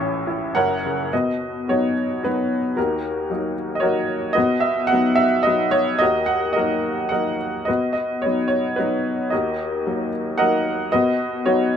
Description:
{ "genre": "classical, lyrical solo piano", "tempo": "111 BPM", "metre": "3/4", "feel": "rubato", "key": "B major", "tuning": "A4 = 442 Hz", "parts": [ { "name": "bright upright piano", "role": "solo", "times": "0.0-11.8 s", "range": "F#1 to C#6", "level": "-19 LUFS", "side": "equal", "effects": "none" } ], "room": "light reverb", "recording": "none", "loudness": "-19 LUFS", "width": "side -8 dB against mid", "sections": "0.0-1.1 A section; 1.1-11.8 B section", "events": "none", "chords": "0.0 A; 0.6 F#7; 1.1 B; 2.8 D#m; 4.4 B; 6.0 D#m; 7.7 B; 9.3 D#m; 10.9 B" }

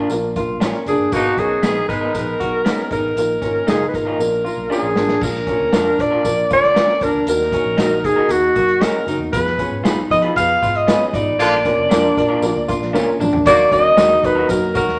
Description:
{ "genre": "uptempo 1960s-style soul", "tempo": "117 BPM", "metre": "4/4", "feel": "straight", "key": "unclear", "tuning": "A4 = 439 Hz", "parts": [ { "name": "dark upright piano", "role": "accompaniment", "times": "0.0-14.9 s", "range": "Gb3 to Cb5", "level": "-25 LUFS", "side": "equal", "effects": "none" }, { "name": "electric guitar through a small old amp", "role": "riff", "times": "0.0-15.0 s", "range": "Db4 to Gb4", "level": "-27 LUFS", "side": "equal", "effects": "none" }, { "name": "electric guitar through a small old amp", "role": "stabs", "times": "0.0-14.5 s", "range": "Cb4 to Cb5", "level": "-28 LUFS", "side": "equal", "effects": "none" }, { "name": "vintage muted fingered electric bass", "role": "bass", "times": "0.0-15.0 s", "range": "F1 to F3", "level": "-32 LUFS", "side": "equal", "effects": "none" }, { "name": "vintage drum kit", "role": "drums", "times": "0.1-14.9 s", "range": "crash cymbal, hi-hat, kick drum, snare drum, toms", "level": "-26 LUFS", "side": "equal", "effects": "none" }, { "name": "tambourine", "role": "percussion", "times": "0.1-14.9 s", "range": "none", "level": "-40 LUFS", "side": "equal", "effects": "none" }, { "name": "breathy alto saxophone", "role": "melody", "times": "0.9-15.0 s", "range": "Gb4 to F5", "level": "-19 LUFS", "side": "equal", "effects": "none" }, { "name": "warm horn section", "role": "second line", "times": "1.1-2.4, 11.4-13.8 s", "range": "Cb3 to Cb5", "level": "-24 LUFS", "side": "equal", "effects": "none" } ], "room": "wet large studio reverb, RT60 1.2 s", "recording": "none", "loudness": "-17 LUFS", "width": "mono", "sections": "0.0-5.2 A section; 5.2-13.5 B section; 13.5-15.0 C section", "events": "drum fill 4.2-5.2, 12.9-13.5; band accent 11.4-13.5", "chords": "0.0 Bb; 1.1 Abmadd9; 3.2 Bbsus4; 4.2 Bb; 7.3 Ebm; 9.3 Fdim; 11.4 Bb; 13.5 Ebm" }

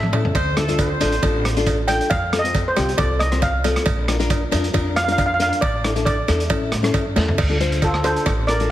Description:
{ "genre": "calypso", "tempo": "136 BPM", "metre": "4/4", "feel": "swing 54% on 16ths", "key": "D minor", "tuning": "A4 = 439 Hz", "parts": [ { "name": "steel pan", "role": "melody", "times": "0.0-8.7 s", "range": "F4 to G5", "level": "-22 LUFS", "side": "right 1 dB", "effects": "none" }, { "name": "upright bass", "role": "bass", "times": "0.0-8.7 s", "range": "A1 to A2", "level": "-23 LUFS", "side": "equal", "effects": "none" }, { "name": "vintage drum kit", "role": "drums", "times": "0.0-8.7 s", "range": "crash cymbal, hi-hat, kick drum, rim click, snare drum, toms", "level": "-23 LUFS", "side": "equal", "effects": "none" }, { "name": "nylon-string guitar", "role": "accompaniment", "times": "0.1-8.7 s", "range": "C4 to C5", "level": "-23 LUFS", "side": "left 3 dB", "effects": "none" }, { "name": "cowbell", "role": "percussion", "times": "0.1-8.4 s", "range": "none", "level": "-28 LUFS", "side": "right 4 dB", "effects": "none" }, { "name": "mellow horn section", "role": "second line", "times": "0.3-1.6 s", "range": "A3 to C5", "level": "-26 LUFS", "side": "equal", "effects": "none" } ], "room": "moderate recital hall reverb, RT60 1.3 s", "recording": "heavily compressed radio sound, multiband compression", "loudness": "-17 LUFS", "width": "side -13 dB against mid", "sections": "0.0-7.4 A section; 7.4-8.7 B section", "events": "drum fill 0.0-0.3, 7.2; steel pan solo 0.0-7.4", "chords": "0.3 Dm7; 2.1 F; 3.9 Bb; 5.6 Asus4; 6.5 A; 7.4 Dm7" }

